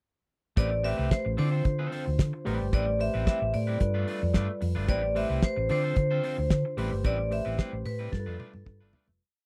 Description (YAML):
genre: disco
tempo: 111 BPM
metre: 4/4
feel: straight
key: A minor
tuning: A4 = 439 Hz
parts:
  - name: vibraphone with hard mallets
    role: melody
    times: 0.6-8.9 s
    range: A4 to E5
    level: -34 LUFS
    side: equal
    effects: none
  - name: electric guitar at the edge of break-up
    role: accompaniment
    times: 0.6-9.1 s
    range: G3 to D5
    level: -41 LUFS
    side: equal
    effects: none
  - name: mellow tine electric piano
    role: accompaniment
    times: 0.6-9.2 s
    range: D3 to C5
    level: -38 LUFS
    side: equal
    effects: none
  - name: hollow-body short-scale fingered electric bass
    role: bass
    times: 0.6-9.2 s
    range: F1 to D3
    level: -32 LUFS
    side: equal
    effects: none
  - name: damped 70s drum kit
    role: drums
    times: 0.6-9.2 s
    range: hi-hat, kick drum, snare drum, toms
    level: -28 LUFS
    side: equal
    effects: none
room: little or no reverb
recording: dry, close 1970s-style studio recording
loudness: -28 LUFS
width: mono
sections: 0.6-9.2 verse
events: fade-out 7.0-9.2; drum fill 8.1-9.2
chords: 0.6 Am9; 1.4 Dm7; 2.5 Am9; 3.8 G9; 4.9 Am9; 5.7 Dm7; 6.8 Am9; 8.1 G9